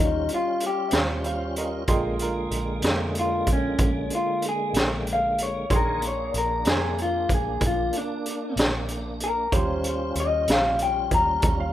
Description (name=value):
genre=slow blues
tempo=63 BPM (dotted quarters)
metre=12/8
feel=straight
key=Bb mixolydian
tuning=A4 = 439 Hz
part: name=electric guitar through a small old amp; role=melody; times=0.0-11.4 s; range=Db4 to Bb5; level=-25 LUFS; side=left 2 dB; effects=none
part: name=bright upright piano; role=accompaniment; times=0.0-11.7 s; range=Db4 to C6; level=-36 LUFS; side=right 4 dB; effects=none
part: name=tonewheel organ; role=sustained chords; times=0.0-11.7 s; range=D3 to Db5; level=-32 LUFS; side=equal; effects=overdrive, chorus vibrato, slow rotary speaker
part: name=vintage muted fingered electric bass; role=bass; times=0.0-11.7 s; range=Bb1 to F2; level=-31 LUFS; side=equal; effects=none
part: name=raw garage drum kit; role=drums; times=0.3-11.6 s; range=hi-hat, kick drum, snare drum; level=-25 LUFS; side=equal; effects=none
part: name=clear upright piano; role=second line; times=0.9-3.0, 11.4-11.7 s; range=F4 to Bb5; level=-32 LUFS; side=right 4 dB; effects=tape echo
room=light reverb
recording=rough home demo mix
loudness=-22 LUFS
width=side -12 dB against mid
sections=0.0-11.7 A section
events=none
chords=0.0 Eb13; 1.9 Bb13; 9.5 Eb13